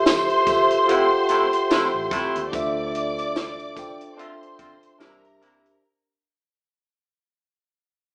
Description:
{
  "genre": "lush 1970s-style soul",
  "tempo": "73 BPM",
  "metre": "4/4",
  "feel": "swing 58% on 16ths",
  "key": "F major",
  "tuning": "A4 = 440 Hz",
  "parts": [
    { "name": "warm studio string section", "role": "second line", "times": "0.0-5.8 s", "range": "Bb4 to D6", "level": "-25 LUFS", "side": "equal", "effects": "none" },
    { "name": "tine electric piano", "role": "accompaniment", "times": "0.0-5.8 s", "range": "D4 to G5", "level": "-26 LUFS", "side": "equal", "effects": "none" },
    { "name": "vintage muted fingered electric bass", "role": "bass", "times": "0.0-5.7 s", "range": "F1 to Eb2", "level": "-45 LUFS", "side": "equal", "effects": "none" },
    { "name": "compact cocktail drum kit", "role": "drums", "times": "0.1-5.8 s", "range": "hi-hat, kick drum, snare drum", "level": "-26 LUFS", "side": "equal", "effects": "none" },
    { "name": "tambourine", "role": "percussion", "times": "0.1-5.6 s", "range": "none", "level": "-43 LUFS", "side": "equal", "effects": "none" },
    { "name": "warm horn section", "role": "stabs", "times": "0.9-5.7 s", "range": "C3 to F4", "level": "-30 LUFS", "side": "equal", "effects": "none" }
  ],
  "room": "wet large studio reverb, RT60 0.9 s",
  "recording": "band playing live in one room, small speaker sound",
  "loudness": "-21 LUFS",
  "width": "mono",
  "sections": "0.0-5.8 A section",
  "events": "fade-out 0.0-5.8",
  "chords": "0.0 Fmaj7; 2.5 Dm7; 5.0 C7",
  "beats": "0.06 0.88 1.71 | 2.53 3.35 4.18 5.00"
}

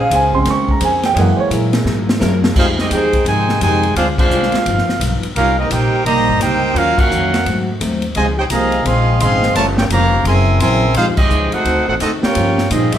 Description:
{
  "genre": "jazz, big band swing",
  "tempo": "172 BPM",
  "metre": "4/4",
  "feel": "swing 64% on 8ths",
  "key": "F minor",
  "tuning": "A4 = 440 Hz",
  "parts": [
    { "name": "warm upright piano", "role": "accompaniment", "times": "0.0-2.5 s", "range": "Db3 to Db6", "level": "-16 LUFS", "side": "right 2 dB", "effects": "none" },
    { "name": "warm saxophone section", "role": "sustained chords", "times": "0.0-2.4 s", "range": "Db3 to Bb4", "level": "-27 LUFS", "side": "left 1 dB", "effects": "none" },
    { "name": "upright bass", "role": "bass", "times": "0.0-13.0 s", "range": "F1 to Bb2", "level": "-19 LUFS", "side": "equal", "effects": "none" },
    { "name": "picked plugged-in steel-string acoustic guitar", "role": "accompaniment", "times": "0.1-12.9 s", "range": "G2 to C5", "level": "-23 LUFS", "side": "left 2 dB", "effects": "none" },
    { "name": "swinging big-band drum kit", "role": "drums", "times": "0.1-13.0 s", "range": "crash cymbal, hi-hat, kick drum, ride cymbal, snare drum", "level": "-20 LUFS", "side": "equal", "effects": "none" },
    { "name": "clear trumpet section", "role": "melody", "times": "2.6-13.0 s", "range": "C4 to C6", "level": "-17 LUFS", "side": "right 1 dB", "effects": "none" },
    { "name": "clear trombone section", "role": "second line", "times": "2.6-13.0 s", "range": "C3 to Ab4", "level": "-20 LUFS", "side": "right 1 dB", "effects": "none" }
  ],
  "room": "wet large studio reverb, RT60 0.9 s",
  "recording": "heard from further back in the room",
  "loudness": "-12 LUFS",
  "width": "side -10 dB against mid",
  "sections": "0.0-2.6 A section; 2.6-13.0 B section",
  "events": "upright piano solo 0.0-2.6; drum fill 1.9-2.6; band accent 4.1, 6.9, 11.1",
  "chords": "0.0 Bbm9; 1.2 Gb9; 2.6 Fm9; 4.0 Dm7b5; 4.7 Gaug7; 5.4 Cm7; 6.8 Ebm9; 7.5 Ab7b9; 8.2 Dbmaj9; 9.6 Gm7b5; 10.2 Gb9; 10.9 Fm9; 11.6 D7b9; 12.3 Gm7b5",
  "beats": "0.12 0.46 0.81 | 1.16 1.51 1.86 2.21 | 2.56 2.91 3.26 3.61 | 3.96 4.31 4.66 5.01 | 5.36 5.71 6.06 6.41 | 6.75 7.11 7.45 7.80 | 8.15 8.50 8.85 9.20 | 9.55 9.90 10.25 10.60 | 10.95 11.30 11.65 12.00 | 12.35 12.70"
}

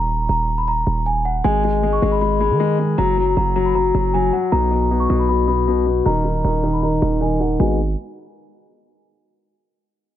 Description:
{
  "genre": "hip hop, trap",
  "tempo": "156 BPM",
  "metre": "4/4",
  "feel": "half-time",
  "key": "G# minor",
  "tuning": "A4 = 439 Hz",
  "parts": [
    { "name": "celesta", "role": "melody", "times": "0.0-7.8 s", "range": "F#5 to C#6", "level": "-23 LUFS", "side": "equal", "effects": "low-pass filter" },
    { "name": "hard-hitting 808-style bass", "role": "bass", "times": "0.0-8.0 s", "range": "D#1 to D#3", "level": "-20 LUFS", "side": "right 2 dB", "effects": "none" },
    { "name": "warm concert grand piano", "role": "accompaniment", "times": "1.4-7.8 s", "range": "B2 to F#4", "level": "-19 LUFS", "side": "left 4 dB", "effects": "low-pass filter" }
  ],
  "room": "little or no reverb",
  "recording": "none",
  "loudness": "-16 LUFS",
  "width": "side -11 dB against mid",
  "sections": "0.0-1.4 A section; 1.4-7.6 B section; 7.6-9.1 C section",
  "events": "break 0.0-1.4; filter sweep 1.4-7.6",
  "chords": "0.0 D#5; 1.4 G#m; 3.0 F#; 4.5 N.C.; 6.1 D#5; 7.6 G#m7",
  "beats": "0.29 0.68 1.06 | 1.45 1.83 2.21 2.60 | 2.98 3.37 3.75 4.14 | 4.52 4.91 5.29 5.67 | 6.06 6.45 6.83 7.21 | 7.60"
}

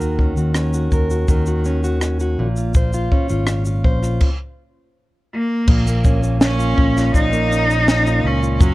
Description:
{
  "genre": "acoustic pop",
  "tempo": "82 BPM",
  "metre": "4/4",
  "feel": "straight",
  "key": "unclear",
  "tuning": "A4 = 436 Hz",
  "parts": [
    { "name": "fingerpicked plugged-in steel-string acoustic guitar", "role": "accompaniment", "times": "0.0-8.7 s", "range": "Bb2 to C5", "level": "-22 LUFS", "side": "equal", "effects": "none" },
    { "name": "fingered electric bass", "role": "bass", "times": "0.0-8.7 s", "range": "Gb1 to Eb2", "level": "-19 LUFS", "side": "equal", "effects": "none" },
    { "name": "compact cocktail drum kit", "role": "drums", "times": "0.0-8.7 s", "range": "crash cymbal, kick drum, rim click, shaker, snare drum", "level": "-17 LUFS", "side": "equal", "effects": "none" },
    { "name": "clear cello", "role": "melody", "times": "5.3-8.7 s", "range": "Bb3 to Eb4", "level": "-19 LUFS", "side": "equal", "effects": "ping-pong delay" }
  ],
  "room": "little or no reverb",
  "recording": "worn, warbling old tape, cassette tape, warbly pitch drift",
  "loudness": "-15 LUFS",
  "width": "side -18 dB against mid",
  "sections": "0.0-5.7 A section; 5.7-8.7 B section",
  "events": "stop 4.2-5.7",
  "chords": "0.0 Ebm7; 2.4 Bbmadd9; 4.2 N.C.; 5.7 Bbm",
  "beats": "0.56 1.29 2.02 | 2.75 3.48 4.22 4.95 | 5.68 6.41 7.14 7.87 | 8.61"
}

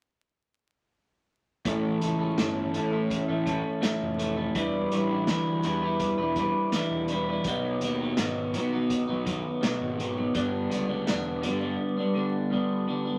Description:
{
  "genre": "psychedelic rock",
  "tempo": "83 BPM",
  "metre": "4/4",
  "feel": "straight",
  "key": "unclear",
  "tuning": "A4 = 439 Hz",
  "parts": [
    { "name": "electric guitar through a small old amp", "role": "riff", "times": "1.7-13.2 s", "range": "G2 to B4", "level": "-29 LUFS", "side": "equal", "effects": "phaser" },
    { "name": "fuzz picked electric bass", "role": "bass", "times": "1.7-11.8 s", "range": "E1 to B2", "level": "-37 LUFS", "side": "equal", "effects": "overdrive" },
    { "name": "vintage drum kit", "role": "drums", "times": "1.7-11.6 s", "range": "hi-hat, kick drum, snare drum", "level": "-35 LUFS", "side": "equal", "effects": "none" }
  ],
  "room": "moderate studio reverb, RT60 0.8 s",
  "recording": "vinyl crackle",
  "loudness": "-28 LUFS",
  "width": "mono",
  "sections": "1.6-13.2 A section",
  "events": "none",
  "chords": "1.6 A; 4.6 Em7; 7.5 B; 10.3 G",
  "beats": "| 1.65 2.38 3.10 3.83 | 4.55 5.28 6.00 6.73 | 7.45 8.18 8.90 9.63 | 10.35 11.07 11.80 12.52"
}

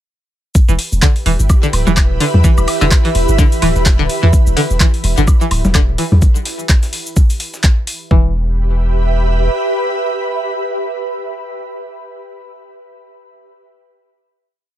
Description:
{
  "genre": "minimal techno",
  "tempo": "127 BPM",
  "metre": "4/4",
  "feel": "swing 58% on 16ths",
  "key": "E minor",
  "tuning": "A4 = 441 Hz",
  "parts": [
    { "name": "dusty soul sampler-style drum kit", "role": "drums", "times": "0.5-8.0 s", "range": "hi-hat, snare drum", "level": "-32 LUFS", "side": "left 1 dB", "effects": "none" },
    { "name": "swarming drone", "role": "texture", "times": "1.4-6.2 s", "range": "E3 to E4", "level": "-28 LUFS", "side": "right 3 dB", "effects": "built-in reverb, sidechain pumping" },
    { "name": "booming analog drum machine", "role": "drums", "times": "0.6-8.0 s", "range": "cabasa, handclaps, hi-hat", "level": "-21 LUFS", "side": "equal", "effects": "none" },
    { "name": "electronic kick drum", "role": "drums", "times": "0.6-8.2 s", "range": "none", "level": "-11 LUFS", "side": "equal", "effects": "overdrive" },
    { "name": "ethereal airy pad", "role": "texture", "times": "1.3-12.1 s", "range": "G4 to B5", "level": "-21 LUFS", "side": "right 1 dB", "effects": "ensemble chorus, built-in reverb, sidechain pumping" },
    { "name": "string-like resonator pluck", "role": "riff", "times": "0.7-8.3 s", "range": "D3 to E3", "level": "-18 LUFS", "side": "left 1 dB", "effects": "chorus, phaser, sidechain pumping, ping-pong delay" },
    { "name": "punchy sub bass", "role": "bass", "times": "0.7-9.5 s", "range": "D1 to E2", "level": "-14 LUFS", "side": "equal", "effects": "sidechain pumping" },
    { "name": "woodblock and congas", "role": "percussion", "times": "1.0-6.2 s", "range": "none", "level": "-20 LUFS", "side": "left 2 dB", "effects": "overdrive, ping-pong delay" }
  ],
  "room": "little or no reverb",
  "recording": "none",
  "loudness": "-11 LUFS",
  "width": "side -12 dB against mid",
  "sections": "0.6-8.1 drop; 8.1-11.9 final chord",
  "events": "drop 0.6-8.1",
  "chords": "0.6 Em",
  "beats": "| 0.55 1.02 1.50 1.97 | 2.44 2.91 3.38 3.86 | 4.33 4.80 5.28 5.75 | 6.22 6.69 7.17 7.64 | 8.11 8.58 9.05 9.53 | 10.00 10.47 10.94 11.42"
}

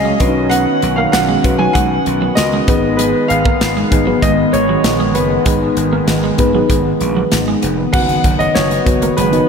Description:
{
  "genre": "1980s-style pop",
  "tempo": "97 BPM",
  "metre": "4/4",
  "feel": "straight",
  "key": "unclear",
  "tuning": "A4 = 439 Hz",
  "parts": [
    { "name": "warm baby grand piano", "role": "melody", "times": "0.0-9.5 s", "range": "B4 to G#5", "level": "-18 LUFS", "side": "equal", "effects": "tape echo" },
    { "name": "mellow FM electric piano", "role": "accompaniment", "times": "0.0-9.5 s", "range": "B3 to D#5", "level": "-18 LUFS", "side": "left 3 dB", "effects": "chorus" },
    { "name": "brassy analog pad", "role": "sustained chords", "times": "0.0-9.5 s", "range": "D#3 to C#4", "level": "-19 LUFS", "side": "right 1 dB", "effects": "chorus" },
    { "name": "gritty slap bass", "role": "bass", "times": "0.0-9.4 s", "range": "E#1 to C#2", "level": "-21 LUFS", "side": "equal", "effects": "overdrive" },
    { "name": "twelve-string electric guitar", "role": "riff", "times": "0.1-9.3 s", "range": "F#3 to C#4", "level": "-23 LUFS", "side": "right 7 dB", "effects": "lush chorus, tape echo" },
    { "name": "modern studio drum kit", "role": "drums", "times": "0.2-9.5 s", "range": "crash cymbal, hi-hat, kick drum, snare drum", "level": "-18 LUFS", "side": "equal", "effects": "none" }
  ],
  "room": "wet lush hall reverb, RT60 2.4 s",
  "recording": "dreamy mix soaked in reverb",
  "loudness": "-12 LUFS",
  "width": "side -6 dB against mid",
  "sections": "0.0-7.9 A section; 7.9-9.5 B section",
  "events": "none",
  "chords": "0.2 Badd9; 2.7 G#m; 7.9 G#m7/F#",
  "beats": "| 0.51 1.13 1.75 2.37 | 2.99 3.61 4.22 4.84 | 5.46 6.08 6.70 7.32 | 7.94 8.55 9.17"
}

